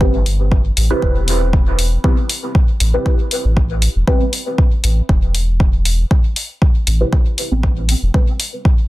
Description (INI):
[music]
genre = dub techno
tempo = 118 BPM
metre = 4/4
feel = swing 53% on 16ths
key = A minor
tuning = A4 = 440 Hz
[part]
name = deep mellow chord stab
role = stabs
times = 0.0-8.3 s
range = C4 to B4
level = -22 LUFS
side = right 1 dB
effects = chorus, phaser, sidechain pumping, dub echo
[part]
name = soft dub sub bass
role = bass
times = 0.0-8.1 s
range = E1 to A1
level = -16 LUFS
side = equal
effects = tube saturation, sidechain pumping
[part]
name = electronic kick drum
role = drums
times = 0.0-8.8 s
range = none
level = -14 LUFS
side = equal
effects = none
[part]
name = electronic hi-hat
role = drums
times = 0.3-8.5 s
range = none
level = -21 LUFS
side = left 2 dB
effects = none
[sound]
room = little or no reverb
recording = dense, heavily limited modern master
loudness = -13 LUFS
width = side -18 dB against mid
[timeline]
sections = 0.0-8.9 A section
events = filter sweep on synth stab 0.0-8.9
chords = 0.0 Am7